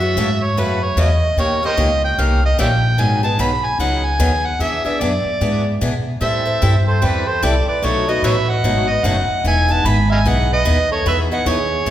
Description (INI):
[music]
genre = acoustic string swing (jazz manouche)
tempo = 149 BPM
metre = 4/4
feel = swing 61% on 8ths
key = E major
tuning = A4 = 440 Hz
[part]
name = overdriven harmonica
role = melody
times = 0.0-11.9 s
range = A#4 to B5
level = -19 LUFS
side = right 1 dB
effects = none
[part]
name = picked swing-style acoustic guitar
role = accompaniment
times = 0.0-11.9 s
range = B2 to A#4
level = -22 LUFS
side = left 2 dB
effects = none
[part]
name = upright bass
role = bass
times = 0.0-11.9 s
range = E1 to B2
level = -18 LUFS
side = equal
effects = none
[part]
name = mellow soprano saxophone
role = second line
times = 6.2-11.9 s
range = G4 to G#5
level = -25 LUFS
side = right 5 dB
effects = none
[sound]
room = wet recital hall reverb, RT60 1.7 s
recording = recorded in a church or concert hall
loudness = -14 LUFS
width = side -12 dB against mid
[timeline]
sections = 0.0-11.9 A section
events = none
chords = 0.0 F#m9; 1.4 D#7; 3.0 G#m7; 4.6 E7; 6.2 Am7; 7.8 B7; 9.4 Emaj7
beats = 0.16 0.57 0.97 | 1.38 1.78 2.18 2.59 | 2.99 3.40 3.80 4.20 | 4.61 5.01 5.41 5.82 | 6.22 6.62 7.03 7.43 | 7.83 8.24 8.64 9.04 | 9.45 9.85 10.25 10.66 | 11.06 11.46 11.87